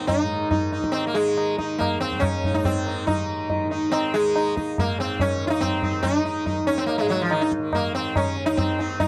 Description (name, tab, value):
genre	indian classical, Hindustani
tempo	141 BPM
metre	7/4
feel	straight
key	Eb raga bageshri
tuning	A4 = 439 Hz
part	sitar	melody	0.0-9.1 s	Eb3 to F4	-25 LUFS	equal	none
part	tanpura	drone	0.0-9.1 s	Eb2 to Eb3	-36 LUFS	equal	none
part	tabla	percussion	0.1-9.1 s	none	-29 LUFS	equal	none
room	light reverb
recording	dry, close 1970s-style studio recording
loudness	-23 LUFS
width	mono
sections	0.0-9.1 A section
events	none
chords	none